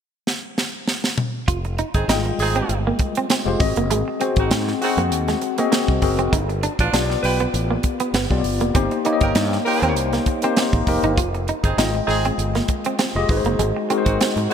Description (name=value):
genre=polished 1980s jazz-funk pop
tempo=99 BPM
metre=4/4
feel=swing 54% on 16ths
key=F minor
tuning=A4 = 444 Hz
part: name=tight funk drum kit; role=drums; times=0.3-14.5 s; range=hi-hat, kick drum, snare drum, toms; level=-23 LUFS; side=right 1 dB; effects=none
part: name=semi-hollow electric guitar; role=riff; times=1.5-14.4 s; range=Ab3 to F4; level=-26 LUFS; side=right 4 dB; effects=lush chorus
part: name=fretless electric bass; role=bass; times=1.5-14.5 s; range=F1 to Ab2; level=-23 LUFS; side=equal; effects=none
part: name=warm horn section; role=second line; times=1.9-14.5 s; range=B3 to B4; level=-27 LUFS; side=right 3 dB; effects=none
part: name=tine electric piano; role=accompaniment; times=2.1-14.5 s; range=G3 to Bb5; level=-22 LUFS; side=left 4 dB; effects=fast stereo tremolo, lush chorus
room=moderate plate reverb, RT60 2.8 s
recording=bright 1980s-style digital production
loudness=-18 LUFS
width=side -8 dB against mid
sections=0.0-1.5 A section; 1.5-14.5 B section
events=drum fill 0.3-1.5; tine electric piano fill 10.3-11.2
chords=0.0 N.C.; 1.5 Fm9; 3.6 Ab7; 6.3 G7; 8.8 Cm7/G; 11.2 Fm9; 13.3 Ab7